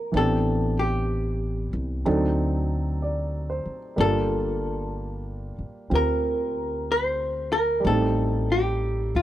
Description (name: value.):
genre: jazz ballad.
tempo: 62 BPM.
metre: 4/4.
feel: swing 66% on 8ths.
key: G minor.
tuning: A4 = 440 Hz.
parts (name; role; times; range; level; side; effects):
vintage hollow-body jazz guitar; melody; 0.0-9.2 s; F4 to C5; -26 LUFS; left 1 dB; none.
warm concert grand piano; accompaniment; 0.0-9.2 s; E3 to D5; -28 LUFS; right 2 dB; none.
upright bass; bass; 0.1-9.2 s; G1 to Eb2; -27 LUFS; equal; none.
room: small room ambience.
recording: dry, close 1970s-style studio recording.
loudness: -22 LUFS.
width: side -13 dB against mid.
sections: 0.0-9.2 A section.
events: none.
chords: 0.1 Am11; 2.1 D7b9; 4.0 Gm7; 7.9 Am7b5.